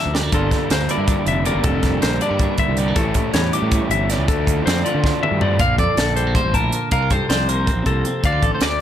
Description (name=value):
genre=math rock and midwest emo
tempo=318 BPM (eighths)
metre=7/8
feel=straight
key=D minor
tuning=A4 = 441 Hz
part: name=twelve-string electric guitar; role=accompaniment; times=0.0-8.8 s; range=D2 to G4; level=-26 LUFS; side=right 5 dB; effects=analog chorus
part: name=clean electric guitar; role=arpeggios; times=0.0-8.8 s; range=A4 to D6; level=-24 LUFS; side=left 9 dB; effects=none
part: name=fuzz fingered electric bass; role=bass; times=0.1-8.8 s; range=F1 to D3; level=-22 LUFS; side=equal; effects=overdrive
part: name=crisp fusion drum kit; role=drums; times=0.1-8.7 s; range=hi-hat, kick drum, snare drum, toms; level=-21 LUFS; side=equal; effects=none
part: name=crunchy overdriven guitar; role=riff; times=0.3-5.6 s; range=G2 to F4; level=-24 LUFS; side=right 2 dB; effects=none
part: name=electric guitar at the edge of break-up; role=melody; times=5.6-8.8 s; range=A4 to F5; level=-22 LUFS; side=equal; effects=wide subtle chorus, digital delay
room=little or no reverb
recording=none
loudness=-16 LUFS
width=side -10 dB against mid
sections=0.0-5.6 A section; 5.6-8.8 B section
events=drum fill 0.0-0.3, 5.0-5.6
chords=0.3 Gm9; 3.0 A7; 4.3 Dm9; 5.6 Bbmaj9; 6.9 C7sus4; 8.2 Dm